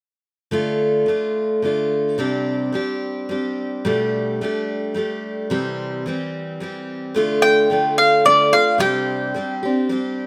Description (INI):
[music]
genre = folk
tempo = 109 BPM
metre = 3/4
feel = straight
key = D minor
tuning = A4 = 436 Hz
[part]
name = picked steel-string acoustic guitar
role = accompaniment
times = 0.5-10.3 s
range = B2 to G4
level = -22 LUFS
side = equal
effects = none
[part]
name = mandolin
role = melody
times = 7.4-9.9 s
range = D5 to G5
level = -18 LUFS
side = equal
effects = none
[sound]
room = light reverb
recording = rough home demo mix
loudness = -20 LUFS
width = mono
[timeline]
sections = 0.5-7.2 A section; 7.2-10.3 B section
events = none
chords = 0.5 Dm; 2.2 Csus2; 3.9 Gadd9/B; 5.5 C; 7.2 Dm; 8.8 Csus2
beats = | 0.53 1.09 1.64 | 2.19 2.75 3.30 | 3.85 4.41 4.96 | 5.51 6.06 6.61 | 7.16 7.71 8.26 | 8.81 9.36 9.91